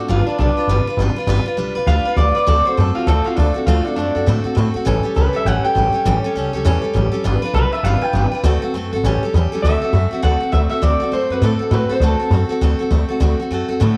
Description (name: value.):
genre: rockabilly.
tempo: 201 BPM.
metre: 4/4.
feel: swing 61% on 8ths.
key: D mixolydian.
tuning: A4 = 440 Hz.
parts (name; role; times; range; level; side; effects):
picked steel-string acoustic guitar; accompaniment; 0.0-14.0 s; A2 to B4; -24 LUFS; equal; none.
electric guitar through a small old amp; melody; 0.1-12.3 s; D4 to G5; -23 LUFS; equal; tape echo.
upright bass; bass; 0.1-14.0 s; G1 to A2; -19 LUFS; equal; none.
room: small room ambience.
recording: none.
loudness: -17 LUFS.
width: mono.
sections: 0.0-9.6 A section; 9.6-14.0 B section.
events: clean electric guitar solo 0.0-9.6.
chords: 0.1 G7; 2.5 D7; 4.9 A7; 7.2 G7; 8.4 D7; 9.0 A7; 9.6 D7.